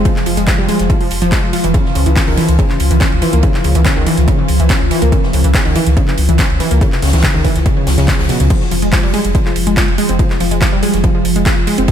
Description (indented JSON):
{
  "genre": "driving peak-time techno",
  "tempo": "142 BPM",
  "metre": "4/4",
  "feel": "straight",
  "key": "unclear",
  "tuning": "A4 = 439 Hz",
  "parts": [
    { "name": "warm sub bass", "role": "bass", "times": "0.0-11.9 s", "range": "F1 to Db2", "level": "-15 LUFS", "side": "equal", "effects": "tube saturation, sidechain pumping, low-pass filter" },
    { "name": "deep dark ambient pad", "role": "drone", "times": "0.0-11.9 s", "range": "F3 to F4", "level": "-20 LUFS", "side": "equal", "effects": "chorus, built-in reverb, sidechain pumping" },
    { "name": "wide unison pluck", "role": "riff", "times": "0.1-11.9 s", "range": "B2 to F4", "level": "-17 LUFS", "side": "equal", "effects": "sidechain pumping, ping-pong delay" },
    { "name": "electronic kick drum", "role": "drums", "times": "0.1-11.9 s", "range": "none", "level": "-15 LUFS", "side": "equal", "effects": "none" },
    { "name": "open jazz drum kit", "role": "drums", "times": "0.1-11.9 s", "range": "hi-hat, ride cymbal, snare drum", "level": "-26 LUFS", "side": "right 1 dB", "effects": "high-pass filter on cymbals, high-pass filter on hats, high-pass filter on snare, high-pass filter on room" },
    { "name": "techno drum kit", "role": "drums", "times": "0.1-11.9 s", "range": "crash cymbal, handclaps, hi-hat", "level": "-21 LUFS", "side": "equal", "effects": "sidechain pumping on hats, sidechain pumping on cymbals" }
  ],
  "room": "moderate lush hall reverb, RT60 1.8 s, small room reverb",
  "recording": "dreamy mix soaked in reverb",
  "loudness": "-11 LUFS",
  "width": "side -9 dB against mid",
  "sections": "0.0-11.9 A section",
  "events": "none",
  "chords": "0.0 Fm; 1.7 Dbm; 8.5 Fm",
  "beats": "| 0.05 0.47 0.90 1.32 | 1.74 2.17 2.59 3.01 | 3.43 3.85 4.28 4.70 | 5.12 5.54 5.97 6.39 | 6.81 7.24 7.66 8.08 | 8.50 8.93 9.35 9.77 | 10.19 10.62 11.04 11.46 | 11.88"
}